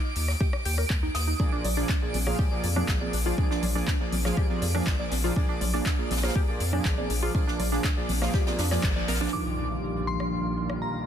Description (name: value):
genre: progressive house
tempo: 121 BPM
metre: 4/4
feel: straight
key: Eb major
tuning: A4 = 441 Hz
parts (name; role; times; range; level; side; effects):
- glassy synth bell; melody; 0.0-1.4, 9.3-11.1 s; Bb5 to Eb6; -36 LUFS; equal; chorus, tremolo, tape echo
- twinkling granular texture; texture; 0.0-9.3 s; D7; -41 LUFS; right 2 dB; built-in reverb, sidechain pumping
- round analog bass; bass; 0.2-9.3 s; Ab1 to F2; -28 LUFS; equal; sidechain pumping
- deep house drum kit; drums; 0.2-10.8 s; handclaps, hi-hat, rim click; -34 LUFS; left 1 dB; none
- jazz brush drum kit; drums; 0.2-10.9 s; ride cymbal, snare drum; -39 LUFS; left 1 dB; sidechain pumping on cymbals, high-pass filter on cymbals, low-pass filter on cymbals, high-pass filter on snare, low-pass filter on snare, high-pass filter on room, low-pass filter on room
- glassy wavetable pluck; arpeggios; 0.4-9.3 s; D4 to D5; -34 LUFS; right 1 dB; chorus, sidechain pumping, ping-pong delay
- electronic kick drum; drums; 0.4-8.9 s; none; -26 LUFS; equal; none
- chorused polysynth; stabs; 1.4-11.1 s; Bb2 to F5; -31 LUFS; right 2 dB; sidechain pumping, ping-pong delay
- congas; percussion; 1.6-9.2 s; none; -36 LUFS; equal; sidechain pumping on perc
- muted chamber string section; sustained chords; 9.3-11.1 s; Bb2 to F5; -34 LUFS; left 2 dB; sidechain pumping, low-pass filter
- impact; sound effects; 9.3-11.1 s; none; -34 LUFS; equal; none
room: light reverb, digital ambience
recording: dense, heavily limited modern master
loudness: -24 LUFS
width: side -9 dB against mid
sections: 0.0-9.3 A section; 9.3-11.1 B section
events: band accent 8.8; impact 9.3-11.1; filter sweep on analog polysynth 9.3-11.1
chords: 0.0 Ebmaj7(no3); 1.4 Bb7; 9.3 Ebmaj9